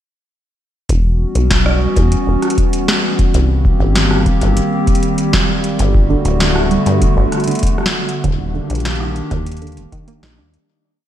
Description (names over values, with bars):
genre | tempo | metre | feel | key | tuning
IDM | 98 BPM | 4/4 | straight | unclear | A4 = 440 Hz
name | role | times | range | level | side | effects
warbly tape-like pad | sustained chords | 0.9-10.7 s | D3 to G4 | -18 LUFS | equal | chorus, built-in reverb, shimmer reverb
deep acid bass | bass | 0.9-10.6 s | D1 to G2 | -16 LUFS | equal | none
booming analog drum machine | drums | 0.9-10.7 s | hi-hat, rim click, snare drum | -19 LUFS | left 1 dB | ping-pong delay
electronic kick drum | drums | 0.9-10.0 s | none | -17 LUFS | equal | none
warbly dusty pluck | arpeggios | 6.1-10.5 s | D3 to D#4 | -22 LUFS | right 4 dB | chorus, ping-pong delay
room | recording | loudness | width
light reverb, digital ambience | none | -13 LUFS | side -11 dB against mid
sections
0.9-10.7 groove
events
fade-out 7.4-10.7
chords
0.9 Em69; 3.3 Cm7; 5.8 Gmaj9; 8.2 D#maj7